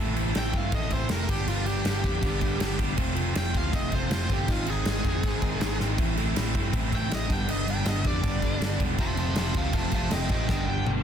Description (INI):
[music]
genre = punk rock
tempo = 160 BPM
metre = 4/4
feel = straight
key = unclear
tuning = A4 = 440 Hz
[part]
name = distorted electric guitar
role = riff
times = 0.0-11.0 s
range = F2 to A4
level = -30 LUFS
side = right 1 dB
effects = distortion
[part]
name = overdriven picked electric bass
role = bass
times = 0.0-11.0 s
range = E1 to G2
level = -30 LUFS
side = equal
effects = none
[part]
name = big rock drum kit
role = drums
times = 0.2-11.0 s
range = crash cymbal, kick drum, snare drum, toms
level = -28 LUFS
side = equal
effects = none
[part]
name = high-gain lead guitar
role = melody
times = 0.4-10.9 s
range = F4 to C6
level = -33 LUFS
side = equal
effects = distortion
[sound]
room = little or no reverb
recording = dense, heavily limited modern master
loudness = -24 LUFS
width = side -8 dB against mid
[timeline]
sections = 0.0-11.0 A section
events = lead electric guitar solo 0.0-11.0; drum fill 5.8, 10.5-11.0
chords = 0.0 Am; 1.3 G; 3.0 F; 4.5 Ab; 6.0 Am; 7.3 G; 9.0 F; 10.5 G